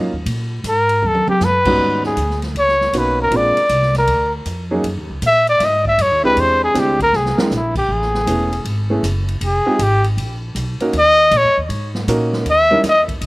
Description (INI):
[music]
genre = jazz, small-group swing and bop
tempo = 158 BPM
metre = 4/4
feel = swing 66% on 8ths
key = unclear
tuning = A4 = 440 Hz
[part]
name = warm baby grand piano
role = accompaniment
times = 0.0-12.8 s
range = Ab2 to A#4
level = -20 LUFS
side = right 1 dB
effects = none
[part]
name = upright bass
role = bass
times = 0.0-13.3 s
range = E1 to Bb2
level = -22 LUFS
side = equal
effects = none
[part]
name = swinging big-band drum kit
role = drums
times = 0.3-13.3 s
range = crash cymbal, hi-hat, kick drum, ride cymbal, snare drum, toms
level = -27 LUFS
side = equal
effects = none
[part]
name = warm trumpet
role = melody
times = 0.7-13.0 s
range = B#3 to E5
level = -14 LUFS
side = equal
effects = slapback echo
[sound]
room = little or no reverb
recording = none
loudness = -14 LUFS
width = side -22 dB against mid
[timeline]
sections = 0.0-1.8 A section; 1.8-13.3 A section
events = trumpet solo 0.0-13.3; drum fill 1.0-1.4, 7.1-7.5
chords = 0.3 Absus2; 1.0 Eb7alt; 1.8 G#m11; 3.3 A#7; 4.8 D#m7; 6.4 E7alt; 7.9 Amaj9; 9.4 Fm9; 10.2 Bmaj9/A#; 10.9 D#m7; 12.5 D#7b9